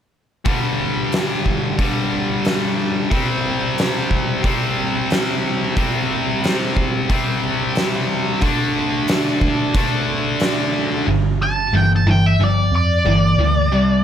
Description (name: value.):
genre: blues rock power trio and southern rock.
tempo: 90 BPM.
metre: 4/4.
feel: straight.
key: unclear.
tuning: A4 = 439 Hz.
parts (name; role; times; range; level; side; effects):
distorted electric guitar; riff; 0.4-14.0 s; G2 to D4; -19 LUFS; equal; overdrive.
oversized low-tuned drum kit; drums; 0.5-10.6 s; hi-hat, kick drum, snare drum; -21 LUFS; equal; none.
vintage muted picked electric bass; bass; 11.1-14.0 s; G1 to F2; -17 LUFS; equal; none.
octave-fuzz lead guitar; melody; 11.4-14.0 s; D5 to A5; -19 LUFS; equal; wah, distortion.
room: light reverb.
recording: none.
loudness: -16 LUFS.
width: side -9 dB against mid.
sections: 0.5-11.1 A section; 11.1-14.0 B section.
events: none.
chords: 0.5 G5; 3.1 C5; 8.4 D5; 11.1 G5.